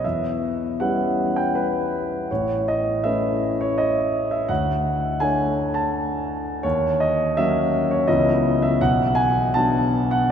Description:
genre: classical, impressionist solo piano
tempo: 82 BPM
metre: 3/4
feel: uneven beats, rubato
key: unclear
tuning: A4 = 442 Hz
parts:
  - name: warm grand piano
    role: solo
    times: 0.0-10.3 s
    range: A1 to A5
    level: -19 LUFS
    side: equal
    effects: none
room: wet cathedral reverb, RT60 5.9 s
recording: in a vast, echoing space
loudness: -19 LUFS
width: side -8 dB against mid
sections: 0.0-10.3 A section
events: none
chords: 0.0 Em6; 2.3 Aadd9; 4.5 Dmaj7; 6.6 D#m7; 8.1 C#m7; 8.8 Bm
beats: | 0.04 0.80 1.54 | 2.30 3.04 3.77 | 4.50 5.22 5.92 | 6.64 7.37 8.07 | 8.80 9.54 10.29

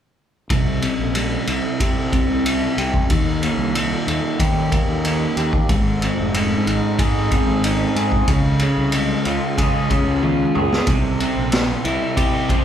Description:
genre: psychedelic rock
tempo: 92 BPM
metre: 4/4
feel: straight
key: unclear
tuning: A4 = 440 Hz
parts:
  - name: crunchy overdriven guitar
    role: riff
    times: 0.5-12.6 s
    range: Ab2 to Ab4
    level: -20 LUFS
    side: equal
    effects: low-pass filter
  - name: fuzz fingered electric bass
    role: bass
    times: 0.5-12.5 s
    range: F1 to Eb3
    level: -24 LUFS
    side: equal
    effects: overdrive
  - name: raw garage drum kit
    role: drums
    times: 0.5-12.6 s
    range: kick drum, ride cymbal, snare drum, toms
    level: -20 LUFS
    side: equal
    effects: none
room: moderate large studio reverb, RT60 1.1 s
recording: band playing live in one room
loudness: -17 LUFS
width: side -9 dB against mid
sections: 0.5-12.6 A section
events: filter sweep on overdriven electric guitar 0.5-12.6; drum fill 10.2-10.9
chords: 0.5 C; 3.1 Eb; 5.7 Ab; 8.3 Db; 10.9 C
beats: | 0.50 1.15 1.80 2.45 | 3.10 3.74 4.39 5.04 | 5.69 6.34 6.99 7.64 | 8.29 8.93 9.58 10.23 | 10.88 11.53 12.17

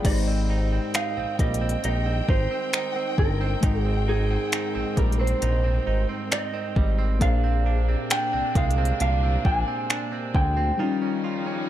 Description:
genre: contemporary R&B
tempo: 67 BPM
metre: 4/4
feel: straight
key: unclear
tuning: A4 = 439 Hz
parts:
  - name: mellow electric guitar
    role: melody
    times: 0.0-11.7 s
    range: Ab4 to Ab5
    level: -29 LUFS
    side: right 3 dB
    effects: spring reverb, tape echo
  - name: mellow FM electric piano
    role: accompaniment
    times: 0.0-11.7 s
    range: G3 to B5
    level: -32 LUFS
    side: left 6 dB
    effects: chorus
  - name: warm studio string section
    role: sustained chords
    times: 0.0-11.7 s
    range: C3 to G5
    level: -35 LUFS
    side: left 4 dB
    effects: none
  - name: direct-recorded clean electric guitar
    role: arpeggios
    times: 0.0-11.7 s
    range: Ab2 to Ab4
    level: -32 LUFS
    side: right 6 dB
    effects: wide subtle chorus
  - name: smooth R&B drum kit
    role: drums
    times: 0.0-10.6 s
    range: crash cymbal, finger snaps, hi-hat, kick drum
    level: -24 LUFS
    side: equal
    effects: overdrive
  - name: smooth synth bass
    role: bass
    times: 0.1-10.7 s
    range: G1 to D2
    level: -24 LUFS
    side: equal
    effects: none
room: little or no reverb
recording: dark, warm production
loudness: -21 LUFS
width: side -12 dB against mid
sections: 0.0-11.7 A section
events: none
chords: 0.0 Abmaj7; 7.2 Bb9; 10.8 Eb9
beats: | 0.05 0.94 1.84 2.73 | 3.63 4.53 5.42 6.32 | 7.21 8.11 9.00 9.90 | 10.79 11.69

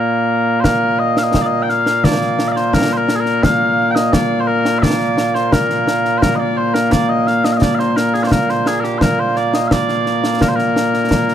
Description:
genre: scottish traditional, Scottish pipe music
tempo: 86 BPM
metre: 2/4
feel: straight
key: Bb major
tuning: A4 = 440 Hz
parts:
  - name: mellow small bagpipes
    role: melody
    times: 0.0-11.3 s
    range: Bb2 to G5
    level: -14 LUFS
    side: equal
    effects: none
  - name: concert snare drum and concert bass drum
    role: drums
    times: 0.6-11.3 s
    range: none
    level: -19 LUFS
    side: equal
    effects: none
room: light reverb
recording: none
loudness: -13 LUFS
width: side -10 dB against mid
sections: 0.6-11.3 A section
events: none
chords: none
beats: | 0.64 1.34 | 2.04 2.73 | 3.43 4.13 | 4.83 5.53 | 6.22 6.92 | 7.62 8.32 | 9.02 9.71 | 10.41 11.11

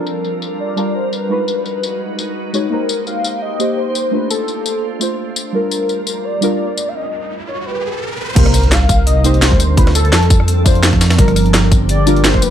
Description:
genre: liquid drum and bass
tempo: 170 BPM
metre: 4/4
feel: swing 54% on 16ths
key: C dorian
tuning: A4 = 440 Hz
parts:
  - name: warm velvety synth lead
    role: melody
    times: 0.0-12.5 s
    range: A4 to F5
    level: -21 LUFS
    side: left 1 dB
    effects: chorus, ping-pong delay
  - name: deep mellow chord stab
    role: accompaniment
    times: 0.0-12.5 s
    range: G3 to Db5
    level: -20 LUFS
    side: equal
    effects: chorus, phaser
  - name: glassy FM pad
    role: sustained chords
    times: 0.0-12.5 s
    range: F3 to C5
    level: -22 LUFS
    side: right 1 dB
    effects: ensemble chorus, built-in reverb
  - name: drum and bass drum kit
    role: drums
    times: 0.1-12.5 s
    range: crash cymbal, hi-hat, rim click, snare drum, tambourine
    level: -19 LUFS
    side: left 1 dB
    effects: low-pass filter on hats, studio ambience, low-pass filter on cymbals, low-pass filter on snare, low-pass filter on perc
  - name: riser and impact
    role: sound effects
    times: 6.8-9.8 s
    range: none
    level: -22 LUFS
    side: equal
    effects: none
  - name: dark detuned saw bass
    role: bass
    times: 8.4-12.5 s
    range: F1 to F2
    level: -13 LUFS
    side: equal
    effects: none
  - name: breakbeat sampler-style drum kit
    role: drums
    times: 8.4-12.5 s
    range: hi-hat, snare drum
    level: -22 LUFS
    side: equal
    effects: high-pass filter on hats, studio ambience, high-pass filter on snare
  - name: electronic kick drum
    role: drums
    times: 8.4-12.4 s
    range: none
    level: -12 LUFS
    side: equal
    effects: studio ambience
room: digital ambience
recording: none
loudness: -13 LUFS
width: side -10 dB against mid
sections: 0.0-8.4 A section; 8.4-12.5 B section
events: riser 6.8-8.4; break 7.0-8.4; drop 8.4-12.5; impact 8.4-9.8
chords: 0.0 Gm7; 1.3 Abm7; 2.7 Cm7; 4.0 Dm7; 5.5 Gm7; 7.0 N.C.; 8.4 Cm7; 9.6 Dm7; 11.2 Gm7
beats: 0.24 0.60 0.95 | 1.30 1.66 2.01 2.36 | 2.72 3.07 3.42 3.77 | 4.13 4.48 4.83 5.19 | 5.54 5.89 6.25 6.60 | 6.95 7.30 7.66 8.01 | 8.36 8.72 9.07 9.42 | 9.78 10.13 10.48 10.83 | 11.19 11.54 11.89 12.24

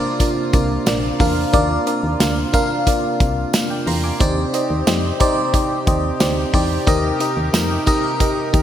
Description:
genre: 1980s-style pop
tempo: 90 BPM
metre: 4/4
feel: straight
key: unclear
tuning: A4 = 440 Hz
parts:
  - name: FM electric piano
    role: accompaniment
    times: 0.0-8.6 s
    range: D4 to D6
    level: -19 LUFS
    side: equal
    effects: chorus, phaser
  - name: brassy analog pad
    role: sustained chords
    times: 0.0-8.6 s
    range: C3 to Bb4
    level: -25 LUFS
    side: right 1 dB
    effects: chorus
  - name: modern studio drum kit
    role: drums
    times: 0.2-8.6 s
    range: hi-hat, kick drum, snare drum, tambourine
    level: -20 LUFS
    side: equal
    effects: none
  - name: tambourine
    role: percussion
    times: 0.2-8.6 s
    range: none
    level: -36 LUFS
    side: right 5 dB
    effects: none
  - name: solid FM bass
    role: bass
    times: 0.5-8.6 s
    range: Bb1 to F2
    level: -22 LUFS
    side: equal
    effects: none
room: wet lush hall reverb, RT60 3.0 s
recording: bright 1980s-style digital production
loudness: -16 LUFS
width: side -10 dB against mid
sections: 0.0-8.6 A section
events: FM electric piano fill 3.2-4.2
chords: 0.0 Bb; 4.2 Cmadd9/Eb; 6.9 Eb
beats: 0.20 0.87 | 1.54 2.20 2.87 3.54 | 4.20 4.87 5.54 6.20 | 6.87 7.54 8.20

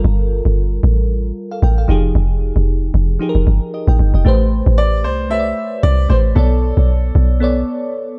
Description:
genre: amapiano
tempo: 114 BPM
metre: 4/4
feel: swing 55% on 16ths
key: unclear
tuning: A4 = 440 Hz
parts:
  - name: bell-like FM electric piano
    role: accompaniment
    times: 0.0-8.2 s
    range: F3 to G5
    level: -24 LUFS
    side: equal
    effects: chorus
  - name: deep log drum bass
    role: bass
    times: 0.0-7.6 s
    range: F1 to C2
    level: -16 LUFS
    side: equal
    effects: none
  - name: warm grand piano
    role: melody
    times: 4.8-7.9 s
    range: A4 to E5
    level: -24 LUFS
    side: equal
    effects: tape echo
room: studio reverb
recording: dark, warm production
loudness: -15 LUFS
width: mono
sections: 0.0-8.2 A section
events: none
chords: 0.0 Gm9; 1.9 Fm9; 4.3 Am9; 6.4 Bm9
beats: | 0.05 0.57 1.10 1.62 | 2.15 2.68 3.20 3.73 | 4.26 4.78 5.31 5.84 | 6.36 6.89 7.42 7.94

